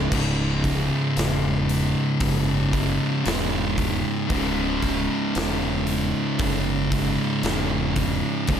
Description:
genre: stoner and doom metal.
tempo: 57 BPM.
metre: 4/4.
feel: straight.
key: C# minor.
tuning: A4 = 440 Hz.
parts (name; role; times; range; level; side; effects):
mellow tonewheel organ; sustained chords; 0.0-8.6 s; none; barely audible; none; none.
thick fuzz guitar; riff; 0.0-8.6 s; C#2 to C#3; -25 LUFS; left 8 dB; distortion.
thick fuzz guitar; riff; 0.0-8.6 s; C#2 to C#3; -25 LUFS; right 7 dB; distortion.
growling fingered electric bass; bass; 0.0-8.6 s; C#1 to F#1; -28 LUFS; equal; overdrive.
big rock drum kit; drums; 0.1-8.6 s; crash cymbal, hi-hat, kick drum, snare drum; -28 LUFS; equal; none.
room: small room ambience.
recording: none.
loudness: -21 LUFS.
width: side -8 dB against mid.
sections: 0.1-8.6 A section.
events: none.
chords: 0.1 C#m.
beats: | 0.11 1.16 2.21 3.25 | 4.30 5.35 6.39 7.44 | 8.48.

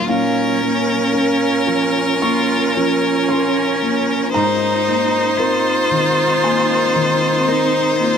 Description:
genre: neoclassical piano and strings.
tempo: 57 BPM.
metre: 4/4.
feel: rubato.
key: Bb minor.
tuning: A4 = 440 Hz.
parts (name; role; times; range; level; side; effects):
bright violin; melody; 0.0-8.2 s; Bb4 to C5; -18 LUFS; left 3 dB; none.
rich cello; second line; 0.0-8.2 s; Bb3 to F4; -21 LUFS; right 4 dB; none.
felt-muted upright piano; accompaniment; 0.0-8.2 s; Ab2 to Db6; -21 LUFS; left 4 dB; none.
rich viola; accompaniment; 0.0-8.2 s; Db4 to Eb4; -22 LUFS; right 6 dB; none.
shimmering ambient pad; sustained chords; 0.0-8.2 s; C4 to Bb4; -27 LUFS; equal; none.
room: moderate plate reverb, RT60 3.5 s.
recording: none.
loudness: -14 LUFS.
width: side -7 dB against mid.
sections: 0.0-8.2 A section.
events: none.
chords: 0.1 Bbm; 4.3 Abadd9.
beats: | 0.08 1.13 2.21 3.28 | 4.34 5.38 6.43 7.47.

